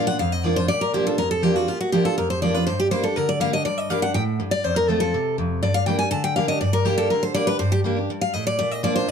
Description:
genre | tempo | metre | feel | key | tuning
bluegrass | 243 BPM | 4/4 | straight | G minor | A4 = 440 Hz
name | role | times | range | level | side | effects
picked steel-string acoustic guitar | melody | 0.0-9.1 s | F4 to A5 | -22 LUFS | equal | none
picked steel-string acoustic guitar | accompaniment | 0.0-9.1 s | F2 to G4 | -22 LUFS | equal | none
room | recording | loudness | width
light reverb | close, detailed microphones | -19 LUFS | side -7 dB against mid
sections
0.0-9.1 A section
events
steel-string acoustic guitar solo 0.0-9.1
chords
0.0 Bb; 2.7 Gm; 4.6 F; 5.6 Gm; 8.6 Bb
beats
0.20 0.45 | 0.69 0.94 1.19 1.43 | 1.68 1.93 2.18 2.42 | 2.67 2.92 3.16 3.41 | 3.66 3.90 4.15 4.40 | 4.64 4.89 5.14 5.38 | 5.63 5.88 6.12 6.37 | 6.62 6.86 7.11 7.36 | 7.60 7.85 8.10 8.34 | 8.59 8.84 9.08

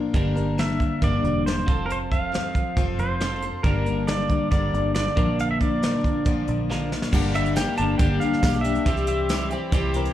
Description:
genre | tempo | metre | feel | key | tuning
folk rock and heartland rock | 138 BPM | 4/4 | straight | G dorian | A4 = 444 Hz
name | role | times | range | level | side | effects
picked steel-string acoustic guitar | accompaniment | 0.0-10.1 s | G2 to Bb4 | -28 LUFS | left 6 dB | plate reverb, slapback echo
twelve-string electric guitar | riff | 0.1-10.1 s | G2 to Bb4 | -28 LUFS | right 2 dB | lush chorus
fingered electric bass | bass | 0.1-10.1 s | E1 to C2 | -27 LUFS | right 1 dB | none
soft brush drum kit | drums | 0.1-10.1 s | crash cymbal, hi-hat, kick drum, snare drum | -25 LUFS | right 1 dB | none
pedal steel guitar | melody | 0.6-9.5 s | Bb4 to A5 | -28 LUFS | right 1 dB | plate reverb, slapback echo
accordion | sustained chords | 7.1-10.1 s | Bb3 to C5 | -37 LUFS | right 3 dB | plate reverb
tambourine | percussion | 7.6-9.4 s | none | -39 LUFS | right 4 dB | none
clear upright piano | second line | 9.5-10.1 s | G4 to Bb4 | -35 LUFS | right 2 dB | slapback echo
room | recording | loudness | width
light reverb | live gig heard through the venue's PA, club reverb | -20 LUFS | side -12 dB against mid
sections
0.0-7.1 A section; 7.1-10.1 B section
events
drum fill 6.7-7.1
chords
0.1 Gm; 1.7 F; 3.6 Gm; 5.2 Bb; 7.1 Gm; 8.9 C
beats
| 0.15 0.58 1.02 1.46 | 1.90 2.33 2.77 3.21 | 3.64 4.08 4.51 4.95 | 5.38 5.82 6.26 6.69 | 7.12 7.56 7.99 8.42 | 8.86 9.29 9.72

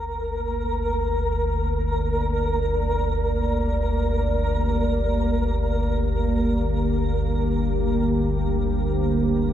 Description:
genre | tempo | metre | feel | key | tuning
dark ambient drone | free time | none | none | G minor | A4 = 440 Hz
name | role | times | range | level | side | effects
dark analog pad | sustained chords | 0.0-9.5 s | Bb3 to D5 | -27 LUFS | right 1 dB | chorus
deep rumbling drone | drone | 0.0-9.5 s | G1 to D2 | -23 LUFS | equal | built-in reverb
flickering grainy texture | texture | 0.0-9.5 s | Bb4 | -28 LUFS | right 1 dB | built-in reverb
room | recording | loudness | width
wet spring reverb, RT60 2.3 s | none | -21 LUFS | side -10 dB against mid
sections
0.0-9.5 A section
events
fade-in on analog synth pad 0.0-9.5; fade-out on synth texture 0.0-9.5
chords
0.0 Gm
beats
free time

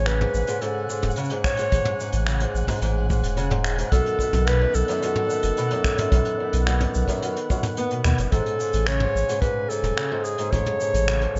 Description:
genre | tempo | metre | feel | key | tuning
folktronica | 109 BPM | 4/4 | straight | A lydian | A4 = 438 Hz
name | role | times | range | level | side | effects
dark clarinet | melody | 0.0-11.4 s | G#4 to C#5 | -28 LUFS | equal | tape echo
pedal harmonium | sustained chords | 0.0-11.4 s | C#3 to G#5 | -35 LUFS | equal | none
fingerpicked steel-string acoustic guitar | arpeggios | 0.0-11.4 s | F#2 to B3 | -31 LUFS | equal | tape echo
warm sub bass | bass | 0.0-11.4 s | E1 to D#2 | -25 LUFS | equal | none
flickering grainy texture | texture | 0.3-8.3 s | F#5 to F#6 | -42 LUFS | equal | built-in reverb
vintage brush drum kit | drums | 0.1-11.4 s | finger snaps, hi-hat, shaker, toms | -32 LUFS | equal | none
kick drum | drums | 1.4-10.6 s | none | -28 LUFS | equal | none
room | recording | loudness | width
light reverb, small room ambience | nothing above 7.7 kHz | -23 LUFS | mono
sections
0.0-8.3 A section; 8.3-11.4 A section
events
none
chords
0.0 Amaj7; 3.9 B7; 8.3 Amaj7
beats
0.07 0.62 1.17 | 1.72 2.27 2.82 3.37 | 3.92 4.47 5.02 5.57 | 6.12 6.67 7.22 7.77 | 8.32 8.87 9.42 9.97 | 10.53 11.07

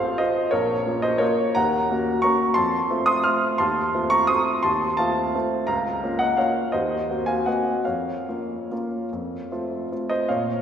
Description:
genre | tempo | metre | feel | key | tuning
classical, piano waltz | 136-188 BPM | 3/4 | rubato | unclear | A4 = 440 Hz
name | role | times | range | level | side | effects
warm baby grand piano | solo | 0.0-10.6 s | A1 to F6 | -20 LUFS | equal | none
room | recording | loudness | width
wet concert hall reverb, RT60 2.2 s | recorded in a church or concert hall | -20 LUFS | side -8 dB against mid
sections
0.0-10.3 A section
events
none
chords
0.0 F/A; 0.5 Bbm; 1.6 Ebm7; 2.6 F; 3.6 F7/Eb; 5.7 Bbm/Db; 6.7 Cm7b5/Eb; 7.9 Bbm/F; 9.1 F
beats
0.20 | 0.54 0.87 1.22 | 1.58 1.91 2.24 | 2.57 2.90 3.25 | 3.60 3.94 4.29 | 4.65 4.99 5.35 | 5.69 6.03 6.39 | 6.74 7.09 7.47 | 7.86 8.27 8.71 | 9.12 9.51 9.91 | 10.30

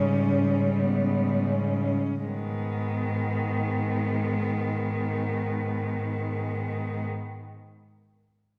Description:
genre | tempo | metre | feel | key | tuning
classical, lyrical piece for cello ensemble | free time | none | none | G# minor | A4 = 442 Hz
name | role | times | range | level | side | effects
rich cello | melody | 0.0-7.0 s | G#3 to C#4 | -35 LUFS | equal | none
clear cello | second line | 0.0-7.0 s | G3 to B3 | -34 LUFS | equal | none
rich cello | accompaniment | 0.0-7.1 s | C#3 to D#3 | -33 LUFS | equal | none
clear cello | bass | 0.0-7.1 s | G#2 | -32 LUFS | equal | none
room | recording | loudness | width
wet scoring stage reverb, RT60 1.5 s | heard from further back in the room | -27 LUFS | mono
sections
0.0-2.2 A section; 2.2-6.4 B section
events
slowing down 0.0-2.2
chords
0.0 D#7/G# (rootless); 2.2 G#m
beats
free time

